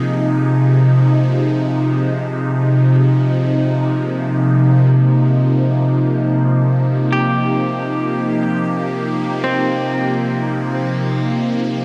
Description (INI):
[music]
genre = ambient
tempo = free time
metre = none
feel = none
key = unclear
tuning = A4 = 440 Hz
[part]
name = evolving wavetable pad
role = sustained chords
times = 0.0-11.8 s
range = C3 to Ab4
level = -16 LUFS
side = equal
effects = phaser, built-in reverb
[part]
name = semi-hollow electric guitar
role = arpeggios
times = 7.1-11.8 s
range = C4 to G4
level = -26 LUFS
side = equal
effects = spring reverb, tape echo
[sound]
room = wet cathedral reverb, RT60 7.3 s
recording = none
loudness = -16 LUFS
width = mono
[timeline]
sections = 0.0-4.9 A section; 4.9-11.8 B section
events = none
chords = 0.0 Fm7; 4.9 Eb69/C